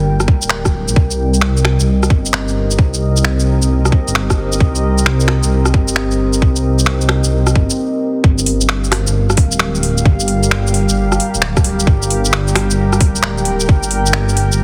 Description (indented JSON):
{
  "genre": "future garage",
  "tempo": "132 BPM",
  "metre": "4/4",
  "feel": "swing 66% on 16ths",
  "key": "G minor",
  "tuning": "A4 = 439 Hz",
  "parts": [
    { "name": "deep dark ambient pad", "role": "sustained chords", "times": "0.0-14.6 s", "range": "G3 to G5", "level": "-22 LUFS", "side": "equal", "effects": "chorus, built-in reverb, sidechain pumping" },
    { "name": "dark detuned saw bass", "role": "bass", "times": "0.0-14.6 s", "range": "D1 to C2", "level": "-18 LUFS", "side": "equal", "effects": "tube saturation, sidechain pumping" },
    { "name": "garage drum kit", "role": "drums", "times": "0.2-14.6 s", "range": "finger snaps, hi-hat, rim click, shaker", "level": "-20 LUFS", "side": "equal", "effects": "none" },
    { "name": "electronic kick drum", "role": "drums", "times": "0.3-13.8 s", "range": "none", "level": "-14 LUFS", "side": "equal", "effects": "none" }
  ],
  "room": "light reverb",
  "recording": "heavily compressed radio sound",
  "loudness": "-14 LUFS",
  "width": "mono",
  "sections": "0.0-8.2 A section; 8.2-14.6 B section",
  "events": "break 7.8-8.2",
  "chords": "0.0 Gm; 1.0 Cm7; 8.2 Gm7",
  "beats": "0.06 0.51 | 0.97 1.42 1.88 2.33 | 2.78 3.24 3.69 4.15 | 4.60 5.06 5.51 5.97 | 6.42 6.88 7.33 7.78 | 8.24 8.69 9.15 9.60 | 10.06 10.51 10.97 11.42 | 11.88 12.33 12.78 13.24 | 13.69 14.15 14.60"
}